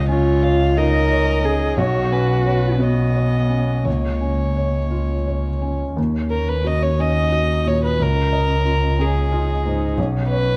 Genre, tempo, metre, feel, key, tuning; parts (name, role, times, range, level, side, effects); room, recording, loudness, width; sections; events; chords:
neoclassical piano and strings; 56-62 BPM (dotted quarters); 6/8; rubato; Eb minor; A4 = 440 Hz
warm violin; melody; 0.0-10.6 s; Ab4 to F5; -26 LUFS; equal
felt-muted upright piano; accompaniment; 0.0-10.6 s; B1 to Eb5; -26 LUFS; equal
dark double bass; bass; 0.0-10.6 s; B1 to Eb2; -22 LUFS; equal
dark cello; second line; 0.1-10.6 s; Bb3 to Bb4; -27 LUFS; equal
light reverb; dark, warm production; -19 LUFS; mono
0.0-6.0 A section; 6.0-10.6 A section
0.0 Dbadd9; 1.8 Bsus2; 3.9 Bbm/Db; 6.0 Ebm7; 8.0 Dbadd9; 10.0 Bsus2